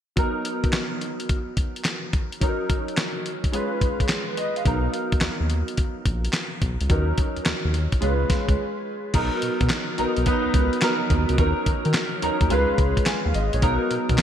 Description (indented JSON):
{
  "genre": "R&B, new jack swing",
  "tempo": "107 BPM",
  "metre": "4/4",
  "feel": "swing 67% on 16ths",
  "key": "unclear",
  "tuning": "A4 = 439 Hz",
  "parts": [
    { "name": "warm concert grand piano", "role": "accompaniment", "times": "0.2-14.2 s", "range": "F#3 to Ab5", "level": "-25 LUFS", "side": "equal", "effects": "ensemble chorus" },
    { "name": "dusty soul sampler-style drum kit", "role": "drums", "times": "0.2-14.2 s", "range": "crash cymbal, handclaps, hi-hat, kick drum, snare drum", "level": "-24 LUFS", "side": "equal", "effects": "gated reverb" },
    { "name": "round analog bass", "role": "bass", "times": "4.7-14.2 s", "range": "Ab1 to Eb3", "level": "-24 LUFS", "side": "equal", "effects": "none" }
  ],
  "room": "moderate plate reverb, RT60 2.7 s",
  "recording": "bright 1980s-style digital production",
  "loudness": "-21 LUFS",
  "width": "side -9 dB against mid",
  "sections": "0.2-9.1 A section; 9.1-14.2 B section",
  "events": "break 8.6-9.1",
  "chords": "0.2 Bmaj7; 2.4 Ebm7; 3.5 Db7; 4.7 Bmaj7; 6.9 Ebm7; 8.0 Db7; 9.1 Bmaj7; 11.4 Ebm7; 12.5 Db7; 13.6 Bmaj7"
}